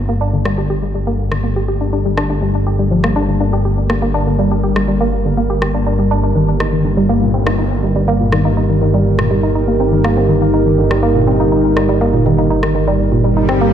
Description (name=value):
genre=melodic techno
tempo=122 BPM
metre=4/4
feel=straight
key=G minor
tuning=A4 = 442 Hz
part: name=dark analog pad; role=sustained chords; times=0.0-13.7 s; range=G3 to Bb4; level=-19 LUFS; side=right 2 dB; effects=chorus
part: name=woody wave-folded pluck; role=arpeggios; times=0.0-13.7 s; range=Bb2 to G4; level=-17 LUFS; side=equal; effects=chorus, ping-pong delay
part: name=swelling detuned saw bass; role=bass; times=0.0-13.7 s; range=G1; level=-18 LUFS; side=equal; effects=none
part: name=analog drone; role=drone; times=0.2-13.7 s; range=G2 to G3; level=-22 LUFS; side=left 1 dB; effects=chorus
part: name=electronic rim click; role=drums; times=0.5-13.6 s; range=none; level=-24 LUFS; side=equal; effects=small room ambience
part: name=swell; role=sound effects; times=13.3-13.7 s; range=none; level=-17 LUFS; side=right 1 dB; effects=none
room=moderate plate reverb, RT60 2.3 s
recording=dreamy mix soaked in reverb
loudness=-12 LUFS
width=side -9 dB against mid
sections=0.0-13.7 A section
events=filter sweep on synth pluck 0.0-13.7; filter sweep on analog synth pad 0.0-13.7; swell 13.3-13.7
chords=0.0 Gm; 6.4 Eb/G